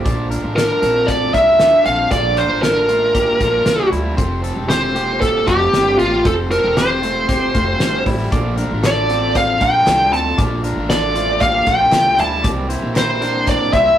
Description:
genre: jangly indie pop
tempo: 116 BPM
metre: 4/4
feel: straight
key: unclear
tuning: A4 = 440 Hz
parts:
  - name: overdriven electric guitar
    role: accompaniment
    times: 0.0-14.0 s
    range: F2 to G4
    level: -26 LUFS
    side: right 3 dB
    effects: none
  - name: electric guitar at the edge of break-up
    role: arpeggios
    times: 0.0-14.0 s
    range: G3 to D5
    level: -24 LUFS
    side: left 2 dB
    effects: none
  - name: upright bass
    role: bass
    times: 0.1-13.9 s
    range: E1 to D2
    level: -24 LUFS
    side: equal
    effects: none
  - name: loose indie drum kit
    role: drums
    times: 0.1-13.9 s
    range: hi-hat, kick drum, snare drum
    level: -22 LUFS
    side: equal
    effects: none
  - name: bluesy overdriven lead guitar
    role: melody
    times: 0.6-14.0 s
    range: F4 to A5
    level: -14 LUFS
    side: equal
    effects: distortion
  - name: group handclap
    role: percussion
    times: 8.8-13.6 s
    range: none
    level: -33 LUFS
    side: right 2 dB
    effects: none
room: wet studio ambience, RT60 0.5 s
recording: rough rehearsal-room recording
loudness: -13 LUFS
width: side -10 dB against mid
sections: 0.1-14.0 A section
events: none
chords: 0.1 Bbmaj7; 4.2 Fadd9; 8.3 Bbmaj7; 12.4 C7

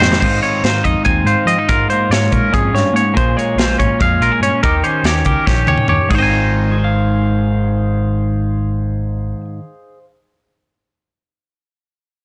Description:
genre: math rock and midwest emo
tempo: 285 BPM (eighths)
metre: 7/8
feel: straight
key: Ab major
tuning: A4 = 440 Hz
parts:
  - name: twelve-string electric guitar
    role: accompaniment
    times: 0.0-10.1 s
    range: F2 to F5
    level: -21 LUFS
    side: equal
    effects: none
  - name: twangy electric guitar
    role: arpeggios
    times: 0.0-9.4 s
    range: G4 to Ab5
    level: -19 LUFS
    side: equal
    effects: none
  - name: picked electric bass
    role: bass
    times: 0.0-9.3 s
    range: Ab1 to Bb3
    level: -21 LUFS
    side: equal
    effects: tube saturation
  - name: crisp fusion drum kit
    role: drums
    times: 0.0-6.2 s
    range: crash cymbal, hi-hat, kick drum, snare drum, toms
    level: -21 LUFS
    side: equal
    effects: vintage 12-bit sampler grit
room: small room ambience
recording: dry, gritty hardware recording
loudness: -15 LUFS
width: mono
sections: 0.2-6.1 A section; 6.1-9.0 B section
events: drum fill 0.0, 5.5-6.1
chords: 0.2 Ab6; 1.7 Db6/Ab; 3.2 Bbm7; 4.6 Eb7; 6.1 Ab6

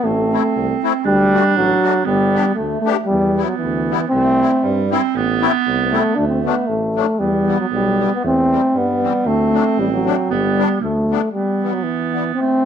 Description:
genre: alpine folk, alpine dance band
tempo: 117 BPM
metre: 2/4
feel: straight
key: unclear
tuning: A4 = 440 Hz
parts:
  - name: warm euphonium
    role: melody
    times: 0.0-12.7 s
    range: E3 to D4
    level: -17 LUFS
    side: left 1 dB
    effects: none
  - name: clear clarinet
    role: second line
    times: 0.0-12.7 s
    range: G3 to D4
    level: -21 LUFS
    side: right 11 dB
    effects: none
  - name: warm tuba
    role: bass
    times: 0.0-11.1 s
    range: G1 to G2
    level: -23 LUFS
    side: equal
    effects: none
  - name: musette accordion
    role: accompaniment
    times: 0.3-12.2 s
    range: E3 to G4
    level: -23 LUFS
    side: left 13 dB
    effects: none
room: light reverb, small room reverb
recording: 1960s-style stereo with parts hard left and right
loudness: -15 LUFS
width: side -8 dB against mid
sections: 0.0-3.1 A section; 3.1-11.3 B section; 11.3-12.7 B section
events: none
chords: 0.0 Am; 1.1 D; 2.1 Gadd9; 3.1 Em; 4.1 C; 5.1 Am; 6.2 D; 7.2 Em; 8.2 C/E; 9.3 D; 10.3 G; 11.3 Em

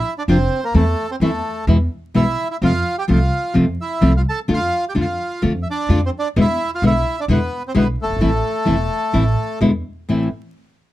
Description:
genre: tango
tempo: 129 BPM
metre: 4/4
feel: rubato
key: A minor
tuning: A4 = 441 Hz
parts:
  - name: bandoneon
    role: melody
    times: 0.0-9.6 s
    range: A3 to A5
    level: -22 LUFS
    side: right 1 dB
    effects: none
  - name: nylon-string guitar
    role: accompaniment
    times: 0.3-10.3 s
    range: A2 to F4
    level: -16 LUFS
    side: left 1 dB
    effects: none
  - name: upright bass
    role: bass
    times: 0.3-10.3 s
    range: E1 to F2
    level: -19 LUFS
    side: equal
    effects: none
room: little or no reverb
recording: close, detailed microphones, vinyl crackle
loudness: -16 LUFS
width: side -15 dB against mid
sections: 0.0-10.1 A section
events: none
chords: 0.0 Bb; 0.7 Am/E; 1.7 E; 2.6 F; 4.5 Dm/F; 6.4 E7; 8.2 Am; 9.6 E7; 10.1 Am

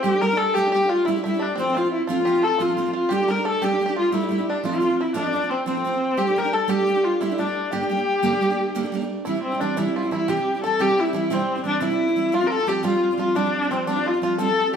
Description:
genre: celtic folk, Celtic slip jig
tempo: 117 BPM (dotted quarters)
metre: 9/8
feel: straight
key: G dorian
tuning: A4 = 441 Hz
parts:
  - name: warm viola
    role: melody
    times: 0.0-14.7 s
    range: C4 to Bb4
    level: -21 LUFS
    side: left 1 dB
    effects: none
  - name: baroque flute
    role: second line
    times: 0.0-14.8 s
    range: C5 to Bb5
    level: -32 LUFS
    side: left 4 dB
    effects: none
  - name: bluegrass banjo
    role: second line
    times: 0.0-14.8 s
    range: C4 to Bb4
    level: -32 LUFS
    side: right 2 dB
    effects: none
  - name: picked steel-string acoustic guitar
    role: accompaniment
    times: 0.0-14.8 s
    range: G2 to G4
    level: -26 LUFS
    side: right 4 dB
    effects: none
room: wet large studio reverb, RT60 1.0 s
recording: band playing live in one room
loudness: -20 LUFS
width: side -7 dB against mid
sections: 0.0-9.3 A section; 9.3-14.8 B section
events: none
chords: 0.0 Gsus2; 1.6 F; 3.1 Gsus2; 4.6 F; 6.2 Gsus2; 7.7 Gmadd9; 9.3 C; 12.3 Fsus2

